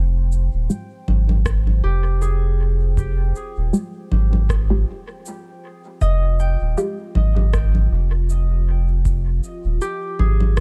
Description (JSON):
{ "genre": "ambient dub", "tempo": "79 BPM", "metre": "4/4", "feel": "swing 56% on 16ths", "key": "F minor", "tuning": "A4 = 440 Hz", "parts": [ { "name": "deep dark ambient pad", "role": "sustained chords", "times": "0.0-10.6 s", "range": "F4 to G5", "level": "-42 LUFS", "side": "equal", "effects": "chorus, built-in reverb, vintage 12-bit sampler grit" }, { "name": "soft dub sub bass", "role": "bass", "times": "0.0-10.6 s", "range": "Eb1 to Ab1", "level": "-20 LUFS", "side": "equal", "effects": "none" }, { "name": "electronic cabasa, congas and rim click", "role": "drums", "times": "0.3-10.6 s", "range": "none", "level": "-30 LUFS", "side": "equal", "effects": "overdrive, dub echo" }, { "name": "filtered dub chord stab", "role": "stabs", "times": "0.7-6.9 s", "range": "Ab3 to G4", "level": "-27 LUFS", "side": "equal", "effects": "phaser, lush chorus, cassette tape, dub echo" }, { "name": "electronic kick drum", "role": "drums", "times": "1.5-10.6 s", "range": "none", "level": "-27 LUFS", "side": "equal", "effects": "none" }, { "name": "concert harp", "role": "arpeggios", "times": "1.8-10.6 s", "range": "G4 to G5", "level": "-33 LUFS", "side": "equal", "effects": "dub echo" } ], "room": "little or no reverb", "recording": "dark, warm production", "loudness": "-20 LUFS", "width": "mono", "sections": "0.0-10.6 A section", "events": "fade-in on ambient pad 0.0-10.6", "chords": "0.0 Fmadd9", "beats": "0.70 1.46 2.22 | 2.98 3.74 4.50 5.26 | 6.02 6.78 7.54 8.29 | 9.05 9.81 10.57" }